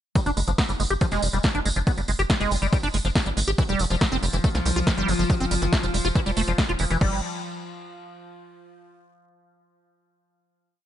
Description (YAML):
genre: psychedelic trance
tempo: 140 BPM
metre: 4/4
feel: straight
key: unclear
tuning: A4 = 440 Hz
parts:
  - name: liquid acid bass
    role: riff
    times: 0.2-7.2 s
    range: E3 to G4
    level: -27 LUFS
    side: equal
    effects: chorus, auto-pan, sidechain pumping, ping-pong delay
  - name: big-room dance drum kit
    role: drums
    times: 0.2-7.1 s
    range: crash cymbal, hi-hat, snare drum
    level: -30 LUFS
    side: equal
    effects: overdrive
  - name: electronic kick drum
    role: drums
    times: 0.2-7.1 s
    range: none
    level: -22 LUFS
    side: equal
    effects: overdrive
  - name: tambourine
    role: percussion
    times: 0.2-7.0 s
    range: none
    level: -34 LUFS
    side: right 2 dB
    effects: none
  - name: tight sequencer bass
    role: bass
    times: 0.3-7.2 s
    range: F1 to C2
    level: -26 LUFS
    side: equal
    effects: tube saturation
  - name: overtone-sweeping drone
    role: sustained chords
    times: 4.2-7.0 s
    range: F3 to F4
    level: -31 LUFS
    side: left 2 dB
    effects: chorus, built-in reverb, sidechain pumping
room: digital ambience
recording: nothing above 10.6 kHz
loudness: -21 LUFS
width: side -11 dB against mid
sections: 0.2-7.0 groove; 7.0-8.7 final chord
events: none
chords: 0.2 G5; 3.6 F5; 7.0 N.C.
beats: | 0.15 0.58 1.01 1.44 | 1.87 2.30 2.73 3.15 | 3.58 4.01 4.44 4.87 | 5.30 5.73 6.16 6.58 | 7.01